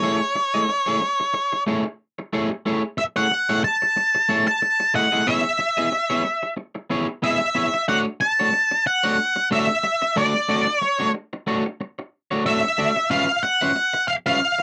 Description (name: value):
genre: funk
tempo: 92 BPM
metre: 4/4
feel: swing 56% on 16ths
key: unclear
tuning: A4 = 440 Hz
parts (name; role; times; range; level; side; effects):
- octave-fuzz lead guitar; melody; 0.0-14.6 s; C#5 to A5; -22 LUFS; equal; distortion
- electric guitar at the edge of break-up; accompaniment; 0.0-14.6 s; A3 to E5; -26 LUFS; equal; none
room: little or no reverb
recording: dry, close 1970s-style studio recording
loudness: -21 LUFS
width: mono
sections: 0.0-7.9 A section; 7.9-14.6 B section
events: none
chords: 0.0 F#m9 (rootless); 5.3 C#m7; 7.9 Dmaj9/A; 13.1 C#7#9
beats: | 0.03 0.69 1.34 2.00 | 2.65 3.31 3.96 4.61 | 5.27 5.92 6.58 7.23 | 7.88 8.53 9.19 9.84 | 10.49 11.14 11.79 12.45 | 13.10 13.75 14.41